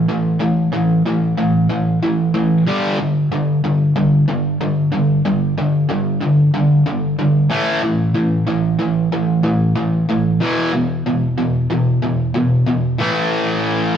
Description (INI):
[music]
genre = rock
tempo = 93 BPM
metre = 4/4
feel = straight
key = unclear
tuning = A4 = 441 Hz
[part]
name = distorted electric guitar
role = solo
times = 0.0-14.0 s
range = E2 to A3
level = -14 LUFS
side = equal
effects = distortion
[sound]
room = wet stone room reverb, RT60 1.1 s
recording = rough rehearsal-room recording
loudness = -14 LUFS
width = side -8 dB against mid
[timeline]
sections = 0.0-13.0 A section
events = none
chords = 0.0 A5; 2.7 G5; 7.5 A5; 10.4 E5; 13.0 A5